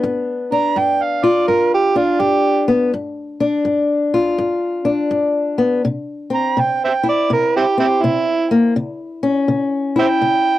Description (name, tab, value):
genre	acoustic country blues, solo or duo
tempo	82 BPM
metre	4/4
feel	swing 64% on 8ths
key	G mixolydian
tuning	A4 = 440 Hz
part	fingerpicked old ladder-braced acoustic guitar	accompaniment	0.0-10.6 s	G2 to F4	-17 LUFS	left 3 dB	none
part	overdriven harmonica	melody	0.5-10.6 s	C4 to Bb5	-16 LUFS	right 4 dB	none
room	light reverb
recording	dry, close 1970s-style studio recording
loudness	-15 LUFS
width	side -14 dB against mid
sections	0.0-10.6 A section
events	none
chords	0.0 G7; 5.8 C; 8.8 C#dim